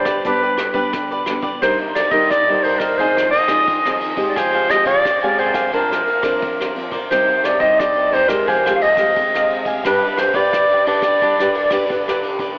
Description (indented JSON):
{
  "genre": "samba and choro",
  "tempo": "88 BPM",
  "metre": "4/4",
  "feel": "straight",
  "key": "C minor",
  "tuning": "A4 = 441 Hz",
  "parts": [
    { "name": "breathy clarinet", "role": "melody", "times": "0.0-11.9 s", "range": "Bb4 to F5", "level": "-16 LUFS", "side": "equal", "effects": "tape echo" },
    { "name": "cavaquinho", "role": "accompaniment", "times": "0.0-12.6 s", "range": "D4 to Ab5", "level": "-23 LUFS", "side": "equal", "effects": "none" },
    { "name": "nylon-string guitar", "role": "accompaniment", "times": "0.0-12.6 s", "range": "G2 to B4", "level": "-24 LUFS", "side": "equal", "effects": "none" },
    { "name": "vintage brush drum kit", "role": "drums", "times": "0.1-12.6 s", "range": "hi-hat, kick drum, ride cymbal, rim click", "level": "-26 LUFS", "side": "equal", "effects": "none" }
  ],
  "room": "wet lush hall reverb, RT60 2.7 s",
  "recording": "dreamy mix soaked in reverb, telephone sound",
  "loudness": "-14 LUFS",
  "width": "side -33 dB against mid",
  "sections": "0.0-1.6 A section; 1.6-12.6 B section",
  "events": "none",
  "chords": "0.0 G; 1.6 Cm7; 3.0 Ab6; 4.4 Fmadd9; 5.7 Bbadd9; 7.1 Cm; 8.5 Fmadd9; 9.8 G",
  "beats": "0.25 0.94 | 1.62 2.31 2.99 3.68 | 4.37 5.05 5.74 6.42 | 7.11 7.79 8.48 9.16 | 9.85 10.54 11.22 11.90"
}